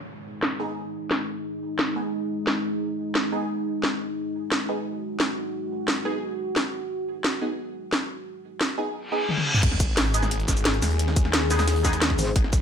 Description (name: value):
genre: dark technical drum and bass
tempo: 176 BPM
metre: 4/4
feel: straight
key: G# minor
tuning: A4 = 442 Hz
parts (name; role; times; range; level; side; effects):
- deep dark ambient pad; sustained chords; 0.0-12.6 s; G#3 to B4; -30 LUFS; left 1 dB; chorus, built-in reverb, vintage 12-bit sampler grit, sidechain pumping
- downlifter, reverse cymbal and sub drop; sound effects; 0.0-1.4, 9.1-11.0 s; none; -29 LUFS; left 1 dB; none
- drum and bass drum kit; drums; 0.4-12.6 s; crash cymbal, hi-hat, shaker, snare drum, toms; -25 LUFS; equal; low-pass filter on hats, low-pass filter on snare, low-pass filter on perc, low-pass filter on toms, low-pass filter on cymbals, low-pass filter on room
- band-passed chord stab; stabs; 0.6-12.0 s; B3 to G#4; -31 LUFS; right 1 dB; phaser, ensemble chorus, ping-pong delay
- snarling distorted saw bass; bass; 9.6-12.6 s; G#1 to D#2; -25 LUFS; equal; distortion, sidechain pumping
- breakbeat sampler-style drum kit; drums; 9.6-12.6 s; hi-hat, snare drum; -35 LUFS; equal; none
- electronic kick drum; drums; 9.6-12.6 s; none; -23 LUFS; equal; overdrive
- metallic wobble bass; bass; 12.2-12.3 s; G#1; -25 LUFS; equal; chorus
room: light reverb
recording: none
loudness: -23 LUFS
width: side -7 dB against mid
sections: 0.0-9.6 A section; 9.6-12.6 B section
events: reverse cymbal 9.1-9.6; drum fill 9.3-9.6; drop 9.6-12.6; impact 9.6-11.0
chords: 0.0 G#m